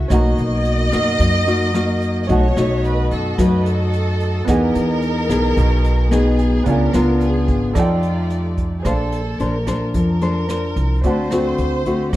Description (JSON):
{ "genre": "bossa nova", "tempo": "110 BPM", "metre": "4/4", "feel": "straight", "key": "Bb major from 8.9 s", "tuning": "A4 = 436 Hz", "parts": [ { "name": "clear baby grand piano", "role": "accompaniment", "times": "0.0-12.2 s", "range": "B3 to A#5", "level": "-27 LUFS", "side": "right 6 dB", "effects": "none" }, { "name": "nylon-string guitar", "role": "accompaniment", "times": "0.0-12.2 s", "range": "A2 to D5", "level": "-19 LUFS", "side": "left 2 dB", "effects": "none" }, { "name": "dark studio violin section", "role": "sustained chords", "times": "0.0-8.8 s", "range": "A3 to D#5", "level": "-30 LUFS", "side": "equal", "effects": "none" }, { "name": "upright bass", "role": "bass", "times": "0.0-12.2 s", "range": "G#1 to F#2", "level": "-20 LUFS", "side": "equal", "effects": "none" }, { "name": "warm symphonic violin section", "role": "second line", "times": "0.1-12.2 s", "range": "F4 to D#5", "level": "-24 LUFS", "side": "right 1 dB", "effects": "none" }, { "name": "jazz brush drum kit", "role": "drums", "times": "0.1-12.2 s", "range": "hi-hat, kick drum, rim click", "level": "-25 LUFS", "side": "equal", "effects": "none" } ], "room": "light reverb", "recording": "dark, warm production", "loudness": "-15 LUFS", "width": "side -15 dB against mid", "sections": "0.0-8.9 A section; 8.9-12.2 B section", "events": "none", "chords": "0.1 Bmaj7; 2.3 B7; 4.5 Emaj7; 6.7 C#7b9; 7.8 F13; 8.9 Bbmaj9; 11.0 D7", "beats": "| 0.11 0.66 1.20 1.75 | 2.29 2.84 3.39 3.93 | 4.48 5.03 5.57 6.12 | 6.67 7.21 7.76 8.31 | 8.85 9.40 9.95 10.49 | 11.04 11.58 12.13" }